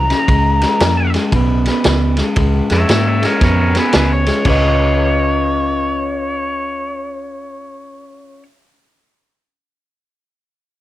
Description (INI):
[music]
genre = electric blues shuffle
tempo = 115 BPM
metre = 4/4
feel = swing 63% on 8ths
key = Db mixolydian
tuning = A4 = 440 Hz
[part]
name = biting lead guitar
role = melody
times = 0.0-8.4 s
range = Ab4 to Bb5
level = -19 LUFS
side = equal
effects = overdrive
[part]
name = electric guitar through a small old amp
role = riff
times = 0.0-8.5 s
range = Gb2 to Eb5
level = -18 LUFS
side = left 1 dB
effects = spring reverb
[part]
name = vintage muted fingered electric bass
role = bass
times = 0.0-8.4 s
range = Cb2 to Ab2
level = -17 LUFS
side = equal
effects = none
[part]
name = vintage drum kit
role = drums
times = 0.1-4.6 s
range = crash cymbal, kick drum, ride cymbal, snare drum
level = -19 LUFS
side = equal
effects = none
[sound]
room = light reverb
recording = none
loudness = -12 LUFS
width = side -14 dB against mid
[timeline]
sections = 0.0-4.5 A section; 4.5-8.6 B section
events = none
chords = 0.3 Db6; 4.5 Db9